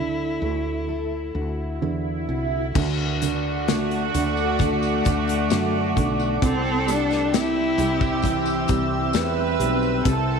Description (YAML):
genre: pop ballad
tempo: 66 BPM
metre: 4/4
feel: straight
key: unclear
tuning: A4 = 440 Hz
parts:
  - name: warm cello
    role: melody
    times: 0.0-8.7 s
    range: A3 to E4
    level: -26 LUFS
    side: left 3 dB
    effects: slapback echo
  - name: felt-muted upright piano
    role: accompaniment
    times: 0.0-10.4 s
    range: C3 to C4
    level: -28 LUFS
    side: right 10 dB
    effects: none
  - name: fingerpicked steel-string acoustic guitar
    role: arpeggios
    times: 0.0-10.4 s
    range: C3 to C5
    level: -34 LUFS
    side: left 10 dB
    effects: none
  - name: woody fretless electric bass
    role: bass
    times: 0.0-10.4 s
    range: B1 to F#2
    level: -28 LUFS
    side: equal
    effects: none
  - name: swell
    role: sound effects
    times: 1.5-2.8 s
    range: none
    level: -33 LUFS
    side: right 3 dB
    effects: none
  - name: warm studio violin section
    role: second line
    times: 2.7-10.4 s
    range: F#4 to B4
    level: -27 LUFS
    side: right 9 dB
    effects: none
  - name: glassy FM pad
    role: sustained chords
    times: 3.5-10.4 s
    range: C4 to E6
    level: -28 LUFS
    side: left 2 dB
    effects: ensemble chorus, built-in reverb
  - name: modern studio drum kit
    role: drums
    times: 2.8-10.3 s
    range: crash cymbal, hi-hat, kick drum, snare drum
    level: -26 LUFS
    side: left 4 dB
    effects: none
  - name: tambourine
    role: percussion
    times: 2.8-10.3 s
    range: none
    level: -41 LUFS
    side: left 14 dB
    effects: none
room: moderate echo chamber reverb, RT60 2.5 s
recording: 1960s-style stereo with parts hard left and right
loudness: -20 LUFS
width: side -6 dB against mid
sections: 0.0-2.8 A section; 2.8-10.4 B section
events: swell 1.5-2.8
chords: 0.0 Dadd9; 2.8 D; 6.4 C